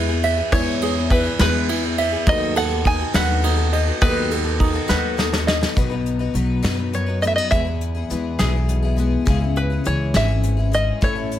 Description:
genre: indie folk with a building arrangement.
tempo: 69 BPM (dotted quarters).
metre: 6/8.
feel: straight.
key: unclear.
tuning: A4 = 440 Hz.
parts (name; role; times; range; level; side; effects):
open-back banjo; melody; 0.0-11.4 s; G#4 to G#5; -24 LUFS; right 1 dB; slapback echo.
clear upright piano; accompaniment; 0.0-5.8 s; D#2 to B4; -33 LUFS; right 2 dB; none.
picked twelve-string acoustic guitar; accompaniment; 0.0-11.4 s; A2 to B4; -27 LUFS; left 9 dB; none.
ukulele; arpeggios; 0.0-5.8 s; D#4 to E5; -24 LUFS; right 4 dB; slapback echo.
upright bass; bass; 0.0-11.4 s; G#1 to F#2; -22 LUFS; equal; none.
soft brush drum kit; drums; 0.2-11.4 s; hi-hat, kick drum, ride cymbal, snare drum; -22 LUFS; equal; none.
fingerpicked steel-string acoustic guitar; accompaniment; 5.8-11.4 s; E2 to C#4; -26 LUFS; left 2 dB; none.
room: light reverb.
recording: none.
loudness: -17 LUFS.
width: side -11 dB against mid.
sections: 0.0-5.8 A section; 5.8-11.4 B section.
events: drum fill 4.9-5.8.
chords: 0.0 E; 2.3 B7/D#; 5.8 B; 7.5 E; 9.3 C#m.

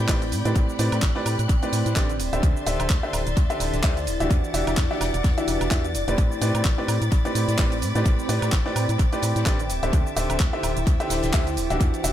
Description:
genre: piano house.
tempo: 128 BPM.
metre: 4/4.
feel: swing 57% on 16ths.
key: A dorian.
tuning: A4 = 439 Hz.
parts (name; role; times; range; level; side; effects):
clear studio string section; sustained chords; 0.0-12.1 s; D5 to A6; -35 LUFS; left 2 dB; sidechain pumping.
bright baby grand piano; riff; 0.0-12.1 s; A2 to E5; -27 LUFS; right 1 dB; sidechain pumping, analog delay.
organ-like FM bass; bass; 0.0-12.1 s; D1 to A2; -26 LUFS; equal; sidechain pumping.
deep dark ambient pad; texture; 0.0-12.1 s; C4 to G5; -31 LUFS; left 1 dB; chorus, built-in reverb, sidechain pumping.
electronic kick drum; drums; 0.1-11.9 s; none; -21 LUFS; equal; none.
house drum kit; drums; 0.1-12.1 s; handclaps, hi-hat, shaker, woodblock; -31 LUFS; right 2 dB; analog delay.
loose indie drum kit; drums; 0.1-12.1 s; hi-hat, snare drum; -40 LUFS; left 3 dB; none.
room: light reverb, studio ambience.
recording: echo-heavy mix.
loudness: -20 LUFS.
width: side -11 dB against mid.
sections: 0.0-12.1 A section.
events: none.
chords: 0.0 Am11; 2.2 D9sus4; 4.3 Em9; 6.2 Am11; 9.7 D9sus4.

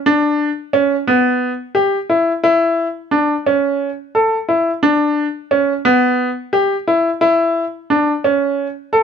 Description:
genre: progressive instrumental, progressive.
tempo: 176 BPM (eighths).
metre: 7/8.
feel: straight.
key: E dorian.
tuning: A4 = 444 Hz.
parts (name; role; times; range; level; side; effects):
bright baby grand piano; solo; 0.1-9.0 s; B3 to A4; -14 LUFS; equal; none.
room: moderate studio reverb, RT60 0.8 s.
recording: none.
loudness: -14 LUFS.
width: side -7 dB against mid.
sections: 0.1-9.0 A section.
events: none.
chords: none.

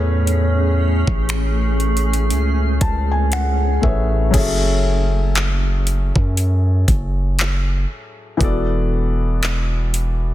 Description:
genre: contemporary R&B.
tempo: 59 BPM.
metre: 4/4.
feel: swing 58% on 16ths.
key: unclear.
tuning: A4 = 440 Hz.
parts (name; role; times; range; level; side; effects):
felt-muted upright piano; accompaniment; 0.0-10.3 s; A2 to A5; -24 LUFS; left 3 dB; none.
granular cloud pad; sustained chords; 0.0-4.3 s; A3 to G#4; -24 LUFS; right 1 dB; built-in reverb, sidechain pumping.
long sustained 808-style bass; bass; 0.0-10.3 s; E1 to F#2; -18 LUFS; equal; none.
smooth R&B drum kit; drums; 0.3-10.2 s; crash cymbal, finger snaps, handclaps, hi-hat, kick drum; -21 LUFS; equal; soft clipping on snare.
room: digital ambience.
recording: dense, heavily limited modern master.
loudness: -16 LUFS.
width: side -14 dB against mid.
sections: 0.0-4.3 A section; 4.3-10.3 B section.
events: felt piano fill 2.3-4.3.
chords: 0.0 Amaj7; 4.3 F#m9; 8.4 E7sus4.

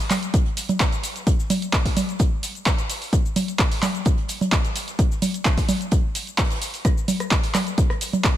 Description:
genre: house.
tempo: 129 BPM.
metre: 4/4.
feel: straight.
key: none.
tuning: none.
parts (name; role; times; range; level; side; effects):
punchy analog drum machine; drums; 0.0-8.3 s; cabasa, congas, handclaps, hi-hat, rim click; -23 LUFS; right 1 dB; none.
open jazz drum kit; drums; 0.1-8.4 s; hi-hat, snare drum; -39 LUFS; right 4 dB; none.
electronic kick drum; drums; 0.3-8.3 s; none; -20 LUFS; equal; none.
room: light reverb.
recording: none.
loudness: -20 LUFS.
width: side -12 dB against mid.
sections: 0.0-8.4 A section.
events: none.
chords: none.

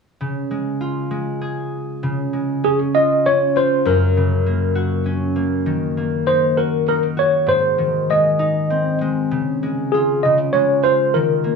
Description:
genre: children's music, lullaby.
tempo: 99 BPM.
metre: 3/4.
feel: straight.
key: Db major.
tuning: A4 = 440 Hz.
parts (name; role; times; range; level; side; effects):
concert harp; accompaniment; 0.2-11.6 s; Gb2 to Ab4; -20 LUFS; left 1 dB; none.
tine electric piano; melody; 2.6-11.6 s; Ab4 to Eb5; -16 LUFS; equal; medium stereo tremolo.
room: moderate studio reverb, RT60 0.6 s.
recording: small room ambience.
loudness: -16 LUFS.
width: side -5 dB against mid.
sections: 0.2-2.0 A section; 2.0-11.6 B section.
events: none.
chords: 0.2 Db; 3.9 Gb; 5.7 Ebm; 7.5 Ab; 9.3 Db.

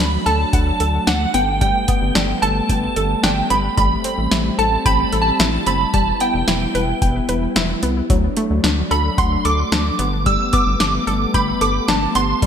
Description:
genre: synth-pop.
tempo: 111 BPM.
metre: 4/4.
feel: straight.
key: unclear.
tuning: A4 = 441 Hz.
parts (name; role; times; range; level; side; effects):
shimmering bell with halo; melody; 0.0-12.5 s; F#5 to E6; -20 LUFS; right 2 dB; ensemble chorus.
warm analog pad; sustained chords; 0.0-12.5 s; F#3 to E4; -24 LUFS; left 2 dB; chorus.
analog pluck; arpeggios; 0.0-12.5 s; F#3 to G5; -24 LUFS; left 3 dB; chorus, ping-pong delay.
rubbery square bass; bass; 0.0-12.5 s; E1 to D2; -22 LUFS; equal; none.
electro analog drum machine; drums; 0.3-12.5 s; hi-hat, kick drum, snare drum; -20 LUFS; equal; gated reverb.
room: moderate lush hall reverb, RT60 2.5 s.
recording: bright 1980s-style digital production.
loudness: -15 LUFS.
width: side -8 dB against mid.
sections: 0.0-12.5 A section.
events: none.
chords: 0.0 D; 1.3 Gadd9; 3.8 Am7; 5.9 Em; 8.1 D; 10.0 Gadd9.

